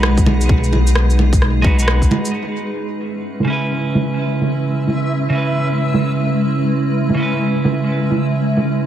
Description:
future garage; 130 BPM; 4/4; swing 62% on 16ths; C# minor; A4 = 439 Hz
clean electric guitar; accompaniment; 0.0-8.9 s; C#3 to B4; -20 LUFS; right 2 dB; sidechain pumping, analog delay
granular cloud pad; sustained chords; 0.0-8.9 s; G#3 to B4; -21 LUFS; equal; built-in reverb, vintage 12-bit sampler grit, sidechain pumping
dark detuned saw bass; bass; 0.0-2.1 s; B1; -15 LUFS; left 1 dB; sidechain pumping
electronic rim click, shaker and bongos; drums; 0.0-8.8 s; -20 LUFS; right 2 dB; low-pass filter on perc, low-pass filter on snare, low-pass filter on room, dub echo
electronic kick drum; drums; 0.2-2.1 s; -14 LUFS; equal
backwards swelling texture; texture; 4.2-8.9 s; E5; -28 LUFS; left 1 dB; built-in reverb
swell; sound effects; 8.8-8.9 s; barely audible
light reverb; echo-heavy mix; -14 LUFS; side -10 dB against mid
0.0-2.3 A section; 2.3-8.9 B section
0.0 G#m7; 2.3 C#m7
0.03 | 0.49 0.95 1.42 1.88 | 2.34 2.80 3.26 3.72 | 4.18 4.65 5.11 5.57 | 6.03 6.49 6.95 7.42 | 7.88 8.34 8.80

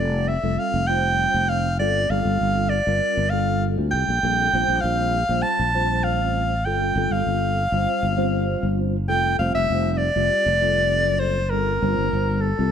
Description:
electric jazz fusion; 99 BPM; 4/4; straight; A4 = 441 Hz
mellow soprano saxophone; melody; 0.0-12.7 s; A4 to A5; -22 LUFS; equal; slapback echo
mellow tine electric piano; accompaniment; 0.0-12.7 s; G3 to C5; -27 LUFS; equal; medium stereo tremolo, ensemble chorus
sustaining fretless electric bass; bass; 0.0-12.7 s; F1 to D2; -24 LUFS; equal; analog chorus
light reverb; -19 LUFS; side -8 dB against mid
0.0-12.7 A section
0.0 Fadd9; 1.8 Gm9; 4.2 Bbsus2; 6.7 Gsus2; 9.1 Fadd9; 11.5 Gm9
0.58 1.19 | 1.79 2.40 3.01 3.62 | 4.23 4.84 5.45 6.05 | 6.66 7.27 7.88 8.48 | 9.09 9.70 10.31 10.91 | 11.52 12.13

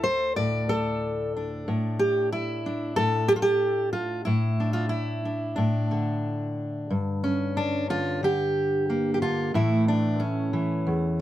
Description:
folk, solo fingerstyle acoustic guitar; 92 BPM; 4/4; straight; A4 = 441 Hz
fingerpicked steel-string acoustic guitar; solo; 0.0-11.2 s; D2 to D5; -23 LUFS; equal
little or no reverb; close, detailed microphones; -23 LUFS; side -13 dB against mid
0.0-6.9 A section; 6.9-11.2 B section
0.0 D5; 1.7 Asus4; 6.9 Gm; 9.5 A
0.37 1.02 | 1.68 2.33 2.97 3.62 | 4.27 4.92 5.58 6.25 | 6.91 7.57 8.23 8.89 | 9.55 10.21 10.86

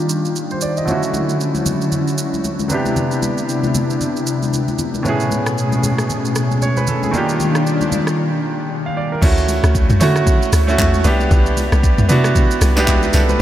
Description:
amapiano; 115 BPM; 4/4; swing 58% on 16ths; A4 = 440 Hz
clear grand piano; accompaniment; 0.0-13.4 s; A2 to F5; -20 LUFS; right 2 dB; low-pass filter
warm analog pad; sustained chords; 0.0-9.2 s; B2 to G#4; -20 LUFS; left 2 dB; chorus, sidechain pumping, low-pass filter
deep house drum kit; drums; 0.1-13.4 s; crash cymbal, handclaps, hi-hat, kick drum, rim click, shaker, snare drum, toms; -20 LUFS; equal
congas; percussion; 0.9-13.4 s; -26 LUFS; left 2 dB
swell; sound effects; 6.6-8.2 s; -32 LUFS; equal
hollow log drum bass; bass; 9.2-13.4 s; C2 to D3; -16 LUFS; equal
moderate huge ambient reverb, RT60 7.4 s; dreamy mix soaked in reverb; -14 LUFS; side -12 dB against mid
0.0-9.2 A section; 9.2-13.4 B section
filter sweep 0.0-9.2; swell 6.6-9.2; break 8.2-9.2; drop 9.2-13.4
0.0 Ebmaj9; 0.9 Dmaj9; 2.7 Cmaj9; 5.0 Amaj9; 7.1 Ebmaj9; 9.2 Dmaj9; 11.1 Cmaj9
0.35 | 0.88 1.40 1.92 2.44 | 2.96 3.48 4.01 4.53 | 5.05 5.57 6.09 6.62 | 7.14 7.66 8.18 8.70 | 9.22 9.75 10.27 10.79 | 11.31 11.83 12.35 12.88 | 13.40

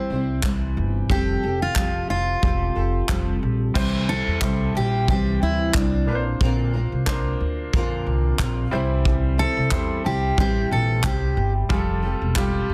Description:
acoustic pop; 91 BPM; 4/4; swing 55% on 16ths; A4 = 442 Hz
fingerpicked steel-string acoustic guitar; melody; 0.0-11.5 s; C4 to A4; -28 LUFS; equal
nylon-string guitar; accompaniment; 0.0-12.7 s; Bb2 to C5; -30 LUFS; equal; double-tracked
upright bass; bass; 0.0-12.7 s; E1 to F2; -26 LUFS; equal
modern studio drum kit; drums; 0.4-12.5 s; crash cymbal, handclaps, kick drum; -26 LUFS; equal; soft clipping on snare
bright concert grand piano; accompaniment; 3.7-12.7 s; G3 to C5; -33 LUFS; equal
light reverb; dense, heavily limited modern master; -22 LUFS; mono
0.0-3.8 A section; 3.8-12.7 B section
0.0 C; 1.1 Fadd9; 3.8 C; 6.1 Bbadd9; 8.7 C; 11.7 Fadd9
0.44 | 1.10 1.77 2.43 3.10 | 3.76 4.42 5.08 5.75 | 6.41 7.07 7.73 8.39 | 9.06 9.72 10.38 11.04 | 11.70 12.37

